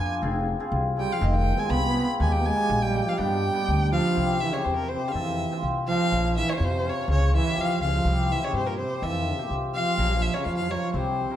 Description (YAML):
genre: klezmer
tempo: 123 BPM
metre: 2/4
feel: straight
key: G phrygian dominant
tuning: A4 = 440 Hz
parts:
  - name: rich violin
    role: melody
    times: 0.0-11.4 s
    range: Bb4 to B5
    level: -29 LUFS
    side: left 1 dB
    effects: none
  - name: cimbalom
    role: accompaniment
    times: 0.0-11.4 s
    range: Bb3 to C5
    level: -29 LUFS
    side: left 3 dB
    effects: none
  - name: upright bass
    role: bass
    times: 0.0-11.2 s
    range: F1 to G2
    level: -26 LUFS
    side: equal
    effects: none
  - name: warm trombone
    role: second line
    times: 1.0-11.4 s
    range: Bb2 to C4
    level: -28 LUFS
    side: right 4 dB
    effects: none
room: moderate recital hall reverb, RT60 1.6 s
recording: none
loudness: -22 LUFS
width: side -11 dB against mid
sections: 0.0-4.2 A section; 4.2-11.4 B section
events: speeding up 0.0-11.4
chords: 0.2 Fm; 2.2 Eb; 3.2 G; 4.2 C; 5.1 F; 6.1 Bbm; 7.1 Db; 8.1 C; 9.0 F; 10.0 Bbm